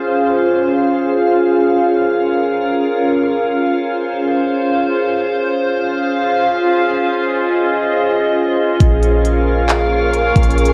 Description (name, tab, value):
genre	hip hop, atmospheric cloud-rap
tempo	free time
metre	none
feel	none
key	Db major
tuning	A4 = 440 Hz
part	glassy FM pad	sustained chords	0.0-10.7 s	Db4 to F5	-16 LUFS	equal	ensemble chorus, built-in reverb, sidechain pumping, cassette tape
part	clean 808-style bass	bass	8.8-10.7 s	Bb1	-18 LUFS	equal	none
part	trap drum kit	drums	8.8-10.7 s	handclaps, hi-hat, kick drum	-18 LUFS	equal	cassette tape
part	wind-like tuned noise texture	texture	9.4-10.7 s	Bb3 to Db5	-28 LUFS	equal	built-in reverb, cassette tape
room	moderate lush hall reverb, RT60 1.9 s, digital ambience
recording	home recording on cassette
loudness	-15 LUFS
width	mono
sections	0.0-10.7 A section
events	none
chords	0.0 Dbmaj7; 1.7 Bbm7; 5.2 Dbmaj7; 8.8 Bbm7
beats	free time